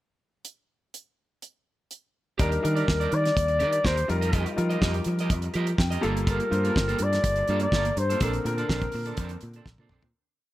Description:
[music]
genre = disco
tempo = 124 BPM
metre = 4/4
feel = straight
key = Bb major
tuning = A4 = 440 Hz
[part]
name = damped 70s drum kit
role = drums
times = 0.4-10.1 s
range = hi-hat, kick drum, snare drum, toms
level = -28 LUFS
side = equal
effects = none
[part]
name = warm flugelhorn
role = melody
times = 2.4-9.6 s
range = Bb4 to D5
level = -27 LUFS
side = left 1 dB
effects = none
[part]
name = electric guitar at the edge of break-up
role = accompaniment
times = 2.4-10.1 s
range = Bb3 to Eb5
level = -34 LUFS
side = right 6 dB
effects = spring reverb
[part]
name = warm concert grand piano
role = accompaniment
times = 2.4-10.2 s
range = D3 to G5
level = -32 LUFS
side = left 3 dB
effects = none
[part]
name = fingered electric bass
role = bass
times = 2.4-10.1 s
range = G1 to F3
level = -28 LUFS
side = equal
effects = none
[sound]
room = small room ambience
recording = none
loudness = -23 LUFS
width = side -15 dB against mid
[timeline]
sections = 0.4-2.4 pickup bar; 2.4-10.1 verse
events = grand piano fill 5.5-6.3; fade-out 8.2-10.1; drum fill 9.7-10.1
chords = 0.4 N.C.; 2.4 Ebmaj7; 4.1 F9sus4; 6.0 Gm9; 8.2 Bbmaj9

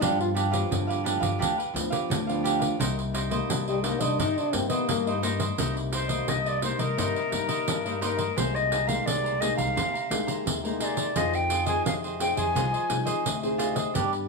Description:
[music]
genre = samba and choro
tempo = 86 BPM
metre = 4/4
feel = straight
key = C minor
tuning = A4 = 440 Hz
[part]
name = breathy trombone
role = second line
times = 0.0-5.1 s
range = G3 to F4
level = -29 LUFS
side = left 4 dB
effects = none
[part]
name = cavaquinho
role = accompaniment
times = 0.0-14.2 s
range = D4 to Bb5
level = -31 LUFS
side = right 4 dB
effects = none
[part]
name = nylon-string guitar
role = accompaniment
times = 0.0-14.3 s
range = G2 to Ab4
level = -32 LUFS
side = left 3 dB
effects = none
[part]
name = upright bass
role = bass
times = 0.0-14.3 s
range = C2 to G2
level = -31 LUFS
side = left 2 dB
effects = none
[part]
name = pandeiro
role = percussion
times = 0.0-14.3 s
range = none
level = -31 LUFS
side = right 4 dB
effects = none
[part]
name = alto recorder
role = melody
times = 5.9-13.4 s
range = Bb4 to Ab5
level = -28 LUFS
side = left 3 dB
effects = plate reverb
[sound]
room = moderate studio reverb, RT60 1.0 s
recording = none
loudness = -24 LUFS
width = side -3 dB against mid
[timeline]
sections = 0.0-5.6 A section; 5.6-14.3 B section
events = trombone solo 0.0-5.6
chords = 0.0 G7; 2.8 Cm7; 8.4 Abadd9/C; 11.2 Fm7

